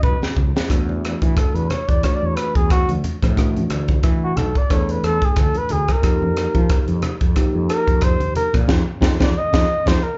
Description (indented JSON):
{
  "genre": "electric jazz fusion",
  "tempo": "90 BPM",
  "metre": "4/4",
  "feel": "swing 55% on 16ths",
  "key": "unclear",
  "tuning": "A4 = 436 Hz",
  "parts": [
    { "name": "trumpet with bucket mute", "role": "melody", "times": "0.0-10.2 s", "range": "F#4 to Eb5", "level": "-24 LUFS", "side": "equal", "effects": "none" },
    { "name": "tine electric piano", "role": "accompaniment", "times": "0.0-10.0 s", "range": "Eb3 to A4", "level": "-28 LUFS", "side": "equal", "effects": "none" },
    { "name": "fretless electric bass", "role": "bass", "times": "0.0-10.0 s", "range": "Cb2 to F3", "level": "-25 LUFS", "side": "equal", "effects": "none" },
    { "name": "crisp fusion drum kit", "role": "drums", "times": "0.0-10.0 s", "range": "hi-hat, kick drum, rim click, snare drum", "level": "-22 LUFS", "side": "equal", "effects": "none" },
    { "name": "congas", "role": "percussion", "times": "0.2-10.0 s", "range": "none", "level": "-29 LUFS", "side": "equal", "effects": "none" }
  ],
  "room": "light reverb",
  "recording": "band playing live in one room, nothing above 7.6 kHz",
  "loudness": "-19 LUFS",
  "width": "mono",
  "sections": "0.0-10.2 A section",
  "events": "muted trumpet solo 0.0-10.2; drum fill 0.0-0.7, 8.7-10.2; band accent 8.7-10.2",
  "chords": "0.0 Db9sus4; 0.7 E9sus4; 6.0 F9sus4"
}